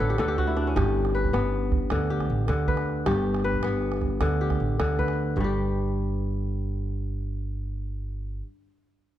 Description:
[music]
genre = west african traditional, West African string and xylophone music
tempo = 104 BPM (dotted quarters)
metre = 12/8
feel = straight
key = G lydian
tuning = A4 = 440 Hz
[part]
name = kora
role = arpeggios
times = 0.0-8.5 s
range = G2 to D5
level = -27 LUFS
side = left 2 dB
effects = none
[part]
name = upright bass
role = bass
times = 0.0-8.4 s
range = G1 to D2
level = -28 LUFS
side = equal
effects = none
[part]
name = calabash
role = percussion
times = 0.1-5.5 s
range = none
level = -32 LUFS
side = right 4 dB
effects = none
[sound]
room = light reverb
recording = dark, warm production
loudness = -24 LUFS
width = side -12 dB against mid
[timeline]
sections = 0.0-5.4 A section; 5.4-7.7 B section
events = kora fill 0.0-0.8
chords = 0.0 D5; 0.8 G; 1.9 D5; 3.1 G; 4.2 D5; 5.4 G

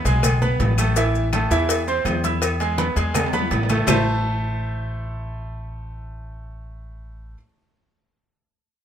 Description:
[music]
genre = latin, salsa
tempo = 165 BPM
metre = 4/4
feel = straight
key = A harmonic minor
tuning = A4 = 441 Hz
[part]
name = bright baby grand piano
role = accompaniment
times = 0.0-7.3 s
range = E3 to E6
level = -24 LUFS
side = right 2 dB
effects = none
[part]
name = upright bass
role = bass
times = 0.0-7.3 s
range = A1 to E2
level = -24 LUFS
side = equal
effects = none
[part]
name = congas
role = percussion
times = 0.1-4.0 s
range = none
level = -29 LUFS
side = left 2 dB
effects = none
[part]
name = cowbell and bongos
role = percussion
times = 0.1-4.0 s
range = none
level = -28 LUFS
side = left 4 dB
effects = none
[part]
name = maracas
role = percussion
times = 0.1-4.0 s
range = none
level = -31 LUFS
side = left 10 dB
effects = none
[part]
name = agogo bells and timbales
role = percussion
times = 0.2-4.0 s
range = none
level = -28 LUFS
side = right 2 dB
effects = none
[part]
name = claves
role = percussion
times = 0.2-4.0 s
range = none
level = -31 LUFS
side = left 4 dB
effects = none
[sound]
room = light reverb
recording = minimal, uncompressed stereo recording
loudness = -18 LUFS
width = side -9 dB against mid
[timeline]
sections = 0.0-3.9 A section; 3.9-6.8 B section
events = drum fill 3.1-3.9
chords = 0.0 E (rootless); 1.0 Am; 2.4 E; 3.9 Am

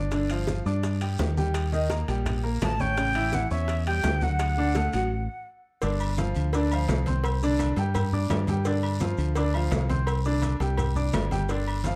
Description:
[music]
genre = latin, salsa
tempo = 169 BPM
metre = 4/4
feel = straight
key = G minor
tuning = A4 = 439 Hz
[part]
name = clear baby grand piano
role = accompaniment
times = 0.0-12.0 s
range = C#3 to D6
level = -32 LUFS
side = equal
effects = none
[part]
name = fingered electric bass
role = bass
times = 0.0-12.0 s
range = G1 to G2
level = -29 LUFS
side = equal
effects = none
[part]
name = bongos and cowbell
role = percussion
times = 0.1-12.0 s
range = none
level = -38 LUFS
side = equal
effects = none
[part]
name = congas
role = percussion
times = 0.1-12.0 s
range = none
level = -36 LUFS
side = equal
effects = none
[part]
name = guiro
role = percussion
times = 0.1-12.0 s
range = none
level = -48 LUFS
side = equal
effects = none
[part]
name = maracas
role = percussion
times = 0.1-12.0 s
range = none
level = -51 LUFS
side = equal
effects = none
[part]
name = timbales and agogo bells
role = percussion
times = 0.1-12.0 s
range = none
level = -38 LUFS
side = equal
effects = none
[part]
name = breathy bright jazz flute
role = melody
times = 2.6-5.5 s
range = E5 to A5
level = -31 LUFS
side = equal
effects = plate reverb
[sound]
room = light reverb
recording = dark, warm production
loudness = -26 LUFS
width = mono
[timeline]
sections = 0.0-5.8 A section; 5.8-12.0 B section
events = stop 5.1-5.8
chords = 0.1 G5; 1.6 Eb; 3.0 A7; 4.4 D; 5.8 G5; 7.2 Csus2; 8.7 G5; 10.1 Csus2

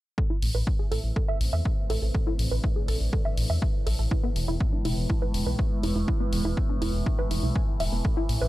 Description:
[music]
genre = melodic techno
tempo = 122 BPM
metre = 4/4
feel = straight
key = A harmonic minor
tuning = A4 = 440 Hz
[part]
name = dark analog pad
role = sustained chords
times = 0.2-8.5 s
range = G#3 to E5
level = -35 LUFS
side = right 1 dB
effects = chorus, sidechain pumping
[part]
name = tight sequenced synth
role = arpeggios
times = 0.2-8.5 s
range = B3 to G#5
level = -33 LUFS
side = right 1 dB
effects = chorus, cassette tape, sidechain pumping, ping-pong delay
[part]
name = overtone-sweeping drone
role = drone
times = 0.5-8.5 s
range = A2 to E3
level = -39 LUFS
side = equal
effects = chorus, built-in reverb, phaser, sidechain pumping
[part]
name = electronic kick drum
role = drums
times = 0.2-8.1 s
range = none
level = -26 LUFS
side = equal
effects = none
[part]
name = dark detuned saw bass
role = bass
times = 0.4-8.5 s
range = E1 to E2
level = -27 LUFS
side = equal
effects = sidechain pumping
[part]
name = electronic hi-hat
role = drums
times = 0.4-8.4 s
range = none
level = -37 LUFS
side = left 1 dB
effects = sidechain pumping on hats
[sound]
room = little or no reverb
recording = dark, warm production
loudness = -24 LUFS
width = side -16 dB against mid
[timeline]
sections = 0.2-8.5 A section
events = filter sweep on detuned saw bass 0.2-8.5; filter sweep on analog synth pad 0.2-8.5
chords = 0.2 Am; 4.1 E

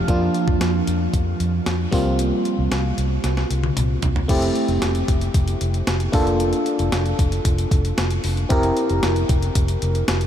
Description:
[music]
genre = 1980s-style pop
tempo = 114 BPM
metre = 4/4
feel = straight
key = unclear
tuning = A4 = 440 Hz
[part]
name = FM electric piano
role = accompaniment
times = 0.0-10.3 s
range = F3 to A5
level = -22 LUFS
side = equal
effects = chorus
[part]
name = vintage muted fingered electric bass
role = bass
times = 0.1-10.3 s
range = F1 to F2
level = -22 LUFS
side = equal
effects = none
[part]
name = clean 12-bit digital drum machine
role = drums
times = 0.1-10.3 s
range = crash cymbal, hi-hat, kick drum, snare drum, toms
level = -23 LUFS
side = equal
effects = none
[sound]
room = moderate huge ambient reverb, RT60 6.9 s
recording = dreamy mix soaked in reverb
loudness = -18 LUFS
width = side -10 dB against mid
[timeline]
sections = 0.0-4.3 A section; 4.3-10.3 B section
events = drum fill 3.2-4.3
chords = 0.1 Bb/F; 1.9 C7sus4; 4.3 Am7/F; 6.1 Bbmaj7/F; 8.5 C7/F

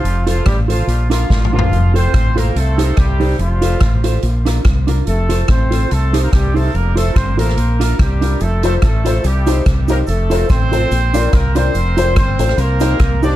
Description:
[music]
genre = ska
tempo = 144 BPM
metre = 4/4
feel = swing 55% on 8ths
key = F mixolydian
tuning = A4 = 440 Hz
[part]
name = warm horn section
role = melody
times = 0.0-13.4 s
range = F3 to D5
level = -21 LUFS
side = equal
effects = dub echo
[part]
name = fingered electric bass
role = bass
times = 0.0-13.4 s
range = F1 to C2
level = -16 LUFS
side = equal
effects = none
[part]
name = street-band drum kit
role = drums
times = 0.1-13.3 s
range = hi-hat, kick drum, rim click, snare drum, toms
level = -17 LUFS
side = equal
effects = none
[part]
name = mellow electric guitar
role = accompaniment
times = 0.3-13.4 s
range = D4 to C5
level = -21 LUFS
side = right 3 dB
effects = harmonic tremolo
[part]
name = cabasa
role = percussion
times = 8.4-13.3 s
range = none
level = -39 LUFS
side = right 7 dB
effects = none
[part]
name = dark upright piano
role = stabs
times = 8.6-13.4 s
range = Eb4 to D5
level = -22 LUFS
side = left 6 dB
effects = dub echo
[sound]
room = light reverb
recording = dark, warm production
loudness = -12 LUFS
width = side -14 dB against mid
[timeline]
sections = 0.0-13.4 A section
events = drum fill 1.3-1.7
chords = 0.1 F; 0.9 Bb; 1.7 F; 2.6 Cm; 3.4 F; 4.2 Bb; 5.1 F; 5.9 Cm; 6.7 F; 7.6 Bb; 8.4 F; 9.2 Cm; 10.1 F; 10.9 Bb; 11.7 F; 12.6 Cm

